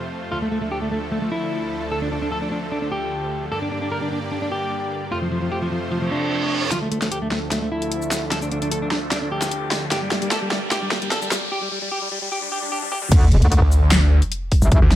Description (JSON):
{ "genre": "heavy wobble dubstep", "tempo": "150 BPM", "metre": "4/4", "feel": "half-time", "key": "D minor", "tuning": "A4 = 440 Hz", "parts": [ { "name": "supersaw chords", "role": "sustained chords", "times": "0.0-11.5 s", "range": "D2 to D5", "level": "-27 LUFS", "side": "right 1 dB", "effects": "sidechain pumping, low-pass filter" }, { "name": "dubstep drum kit", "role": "drums", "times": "0.1-15.0 s", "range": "crash cymbal, handclaps, hi-hat, shaker, snare drum, toms", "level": "-24 LUFS", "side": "equal", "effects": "high-pass filter on hats, low-pass filter on hats, high-pass filter on snare, low-pass filter on snare, high-pass filter on perc, low-pass filter on perc, high-pass filter on toms, low-pass filter on toms, high-pass filter on cymbals, low-pass filter on cymbals" }, { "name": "electric guitar at the edge of break-up", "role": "melody", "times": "0.3-13.1 s", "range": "F3 to Bb4", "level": "-25 LUFS", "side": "equal", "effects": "tape echo" }, { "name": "reverse cymbal, riser, swell and sub drop", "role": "sound effects", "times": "6.0-14.7 s", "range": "none", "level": "-26 LUFS", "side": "equal", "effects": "none" }, { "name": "metallic wobble bass", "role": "bass", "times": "13.1-14.8 s", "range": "E1 to D2", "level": "-15 LUFS", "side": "equal", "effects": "distortion, chorus, overdrive" }, { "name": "electronic kick drum", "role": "drums", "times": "13.1-14.8 s", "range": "none", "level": "-15 LUFS", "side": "equal", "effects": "none" }, { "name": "snarling distorted saw bass", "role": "bass", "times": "13.6-14.9 s", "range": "D2", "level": "-14 LUFS", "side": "equal", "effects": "distortion, overdrive" } ], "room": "light reverb", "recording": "high-pass filter", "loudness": "-19 LUFS", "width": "side -13 dB against mid", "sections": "0.0-6.7 A section; 6.7-13.1 B section; 13.1-15.0 C section", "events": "reverse cymbal 6.0-6.7; build-up 6.7-13.1; drum fill 6.7-11.5, 12.8-13.1; riser 6.7-13.1; filter sweep on supersaw synth 6.7-13.1; filter sweep 6.7-13.1; swell 12.3-13.1; drop 13.1-15.0; impact 13.1-14.7", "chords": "0.3 Dm; 3.5 Gm; 5.1 F; 6.7 Dm; 9.9 Gm; 11.5 N.C." }